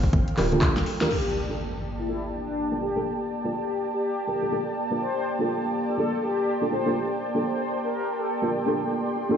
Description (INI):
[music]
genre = deep house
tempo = 123 BPM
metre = 4/4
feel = swing 60% on 16ths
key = G minor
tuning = A4 = 445 Hz
[part]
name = warm analog pad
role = sustained chords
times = 0.0-9.4 s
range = Bb3 to C6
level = -31 LUFS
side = equal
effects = chorus, sidechain pumping
[part]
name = hollow knocking FM bass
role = bass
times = 0.0-0.8 s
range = D1 to G1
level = -28 LUFS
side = equal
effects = sidechain pumping
[part]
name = deep house drum kit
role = drums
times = 0.0-1.2 s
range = crash cymbal, handclaps, hi-hat, snare drum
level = -31 LUFS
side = equal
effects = overdrive
[part]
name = electronic kick drum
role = drums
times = 0.0-0.7 s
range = none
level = -23 LUFS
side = equal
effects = overdrive
[part]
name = congas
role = percussion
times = 0.1-1.1 s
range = none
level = -31 LUFS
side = right 2 dB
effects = none
[part]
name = deep mellow chord stab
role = stabs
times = 0.4-9.4 s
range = Bb3 to Bb4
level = -28 LUFS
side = right 1 dB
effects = chorus, cassette tape, sidechain pumping, tape echo
[part]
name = mellow horn-like synth lead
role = melody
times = 1.1-8.5 s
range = D4 to C5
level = -30 LUFS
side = left 3 dB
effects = analog chorus, analog delay
[part]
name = impact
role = sound effects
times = 1.1-3.1 s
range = none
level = -34 LUFS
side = equal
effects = none
[part]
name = warbly tape-like pad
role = texture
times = 1.8-9.4 s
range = Bb3 to C6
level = -32 LUFS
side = right 3 dB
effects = chorus, built-in reverb, sidechain pumping
[sound]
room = moderate lush hall reverb, RT60 2.5 s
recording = played on a big sound system in a bare room, stone room reverb, nothing above 7.7 kHz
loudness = -24 LUFS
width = side -8 dB against mid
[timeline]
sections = 0.0-1.1 A section; 1.1-9.4 B section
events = filter sweep on synth stab 0.0-1.1; drum fill 0.7-1.1; band accent 1.0; impact 1.1-3.1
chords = 0.0 Gm9